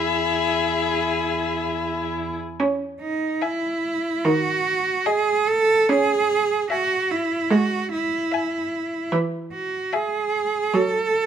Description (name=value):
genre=classical, slow romantic movement for string quartet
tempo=67-76 BPM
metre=4/4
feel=rubato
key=C# minor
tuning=A4 = 443 Hz
part: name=rich violin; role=melody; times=0.0-10.5 s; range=E5 to G#5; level=-26 LUFS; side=left 12 dB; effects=none
part: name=rich violin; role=second line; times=0.0-10.5 s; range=G#4 to E5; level=-28 LUFS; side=left 3 dB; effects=none
part: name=clear viola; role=accompaniment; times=0.0-11.3 s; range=D#3 to E4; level=-23 LUFS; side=right 2 dB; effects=none
part: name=rich cello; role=bass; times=0.0-11.3 s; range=E2 to A4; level=-22 LUFS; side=right 3 dB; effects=none
room=light reverb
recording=minimal, uncompressed stereo recording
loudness=-20 LUFS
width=side -8 dB against mid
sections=0.0-2.6 A section; 2.6-11.3 B section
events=none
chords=0.0 E; 2.6 C#m; 4.2 G#5/D#; 5.9 C#m; 9.1 E; 10.7 B7(no3)/F# (rootless)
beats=0.85 1.72 | 2.59 3.42 4.24 5.06 | 5.89 6.71 7.50 8.32 | 9.12 9.93 10.73